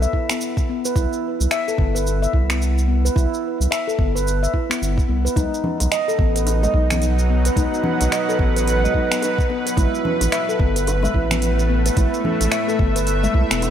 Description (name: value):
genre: organic downtempo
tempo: 109 BPM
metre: 4/4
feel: swing 60% on 16ths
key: unclear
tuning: A4 = 440 Hz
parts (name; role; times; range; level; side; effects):
- handpan; arpeggios; 0.0-13.6 s; B3 to E5; -22 LUFS; left 1 dB; low-pass filter, tape echo, shimmer reverb
- round analog bass; bass; 0.0-13.7 s; E1 to C2; -20 LUFS; equal; tube saturation, sidechain pumping
- organic electronic drum kit; drums; 0.0-13.7 s; finger snaps, hi-hat, shaker; -26 LUFS; right 1 dB; none
- electronic kick drum; drums; 0.1-13.5 s; none; -20 LUFS; equal; none
- bowed-like drone; sustained chords; 6.5-13.7 s; A2 to F#5; -24 LUFS; right 2 dB; built-in reverb, sidechain pumping, shimmer reverb
- congas and bongos; percussion; 5.4-13.7 s; none; -29 LUFS; left 2 dB; none
room: moderate echo chamber reverb, RT60 2.2 s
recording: none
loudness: -17 LUFS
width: side -9 dB against mid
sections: 0.0-13.7 A section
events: none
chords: 0.0 E5; 1.0 C; 5.4 B; 9.8 Asus2